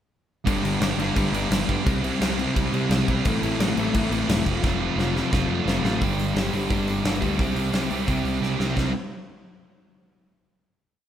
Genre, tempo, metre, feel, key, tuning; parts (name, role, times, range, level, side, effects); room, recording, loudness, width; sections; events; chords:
punk rock; 173 BPM; 4/4; straight; C major; A4 = 441 Hz
sludgy distorted guitar; riff; 0.4-8.9 s; G2 to G4; -26 LUFS; right 6 dB; overdrive
sludgy distorted guitar; riff; 0.5-8.9 s; F2 to C4; -27 LUFS; left 6 dB; overdrive
modern bright picked electric bass; bass; 0.5-8.9 s; E1 to C3; -29 LUFS; equal
big rock drum kit; drums; 0.5-8.9 s; crash cymbal, hi-hat, kick drum, snare drum; -26 LUFS; equal
light reverb; band playing live in one room; -21 LUFS; side -10 dB against mid
0.5-6.0 riff; 6.0-8.8 outro; 8.8-10.2 final chord
drum fill 4.6-6.0, 8.4-8.8
0.5 G; 1.9 C; 3.3 Am; 4.5 F; 6.0 G; 7.4 C; 8.8 C5